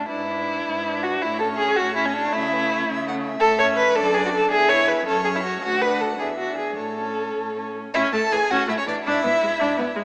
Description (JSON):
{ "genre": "quick classical-period movement for string quartet", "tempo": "108 BPM (dotted quarters)", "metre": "6/8", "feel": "rubato", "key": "A major", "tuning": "A4 = 440 Hz", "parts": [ { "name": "warm violin", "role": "melody", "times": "0.0-10.0 s", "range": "B4 to A5", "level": "-30 LUFS", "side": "equal", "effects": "none" }, { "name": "dark violin", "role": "second line", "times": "0.0-9.9 s", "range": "C#4 to C#5", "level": "-24 LUFS", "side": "equal", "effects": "none" }, { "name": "rich viola", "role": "accompaniment", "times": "0.0-10.0 s", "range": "E3 to E4", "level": "-31 LUFS", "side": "equal", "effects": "none" }, { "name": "warm cello", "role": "bass", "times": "0.0-10.0 s", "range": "D2 to C#3", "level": "-35 LUFS", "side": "equal", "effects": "none" } ], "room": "wet scoring stage reverb, RT60 1.9 s", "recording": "small speaker sound", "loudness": "-22 LUFS", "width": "mono", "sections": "0.0-7.9 A section; 7.9-10.0 B section", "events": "none", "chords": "0.1 E7/G#; 1.2 A; 2.3 A/C#; 3.4 A; 4.0 D/F#; 4.5 E6; 5.1 F#5; 5.6 D; 6.2 E9; 6.8 A; 9.1 E7/G#" }